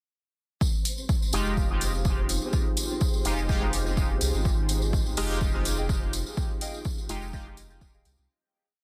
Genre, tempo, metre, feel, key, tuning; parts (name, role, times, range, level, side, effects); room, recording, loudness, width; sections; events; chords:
dub techno; 125 BPM; 4/4; swing 54% on 16ths; F minor; A4 = 440 Hz
dark analog pad; sustained chords; 1.8-8.3 s; Eb4 to Ab4; -39 LUFS; equal; chorus, sidechain pumping
electronic kick drum; drums; 0.6-7.9 s; -30 LUFS; equal; overdrive, studio reverb
tambourine; percussion; 0.6-8.3 s; -38 LUFS; equal
flickering grainy texture; texture; 0.9-8.3 s; C4 to C5; -44 LUFS; equal; built-in reverb, sidechain pumping
electronic hi-hat; drums; 0.9-8.2 s; -37 LUFS; equal; overdrive, studio reverb
resonant sweep polysynth; stabs; 1.3-7.5 s; Ab3 to G4; -36 LUFS; equal; chorus, phaser, sidechain pumping, dub echo
pure sine sub bass; bass; 1.3-8.3 s; Eb1 to C2; -32 LUFS; equal; sidechain pumping
warbly lo-fi synth keys; riff; 5.8-8.1 s; Ab4 to G5; -42 LUFS; equal; chorus, sidechain pumping, dub echo
little or no reverb; dense, heavily limited modern master; -27 LUFS; mono
0.6-8.3 groove
fade-out 5.7-8.3
0.6 Fm9